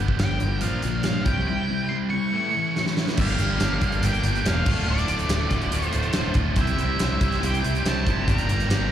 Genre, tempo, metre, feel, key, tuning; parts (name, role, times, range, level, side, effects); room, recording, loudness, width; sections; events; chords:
classic rock; 141 BPM; 4/4; straight; A4 = 440 Hz
cranked stack guitar; riff; 0.0-8.9 s; D2 to C5; -30 LUFS; left 8 dB; overdrive, slapback echo
overdriven electric guitar; riff; 0.0-8.9 s; D2 to C5; -30 LUFS; right 10 dB; slapback echo
fuzz fingered electric bass; bass; 0.0-8.9 s; D1 to G2; -25 LUFS; equal; overdrive
big rock drum kit; drums; 0.1-8.8 s; crash cymbal, hi-hat, kick drum, snare drum; -26 LUFS; equal
octave-fuzz lead guitar; melody; 0.2-8.9 s; D5 to C#6; -29 LUFS; equal; distortion, slapback echo, analog delay
tight distorted guitar; riff; 3.2-8.9 s; D2 to C5; -32 LUFS; equal; distortion, slapback echo
light reverb; live gig heard through the venue's PA, recital hall reverb; -21 LUFS; side -10 dB against mid
0.0-3.2 A section; 3.2-8.9 B section
drum fill 2.8-3.2
0.0 G; 0.6 Bb; 1.3 C; 2.3 A; 3.2 Gm; 4.7 Dm; 6.6 C; 8.3 Gm